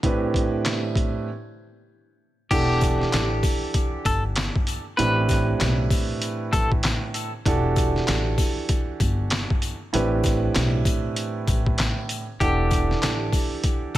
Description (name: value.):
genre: hip hop, boom-bap hip-hop.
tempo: 97 BPM.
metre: 4/4.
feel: swing 62% on 16ths.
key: E minor.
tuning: A4 = 440 Hz.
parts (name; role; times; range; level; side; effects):
dark baby grand piano; accompaniment; 0.0-14.0 s; A2 to F#5; -26 LUFS; right 3 dB; cassette tape, high-pass filter, low-pass filter.
trip hop sampler-style drum kit; drums; 0.0-14.0 s; crash cymbal, handclaps, hi-hat, kick drum, snare drum; -24 LUFS; equal; vintage 12-bit sampler grit.
semi-hollow electric guitar; melody; 2.5-6.7, 12.4-14.0 s; G4 to B4; -28 LUFS; left 1 dB; tremolo, high-pass filter, low-pass filter, tape echo.
upright bass; bass; 2.5-14.0 s; E1 to B1; -26 LUFS; left 1 dB; none.
sleigh bells; percussion; 2.5-14.0 s; none; -38 LUFS; left 10 dB; none.
room: light reverb, studio ambience.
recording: none.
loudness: -20 LUFS.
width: side -14 dB against mid.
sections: 0.0-2.5 A section; 2.5-14.0 B section.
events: break 0.0-2.5.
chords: 0.0 Am11; 2.5 Em11; 5.0 Am11; 7.5 Em11; 9.9 Am11; 12.4 Em11.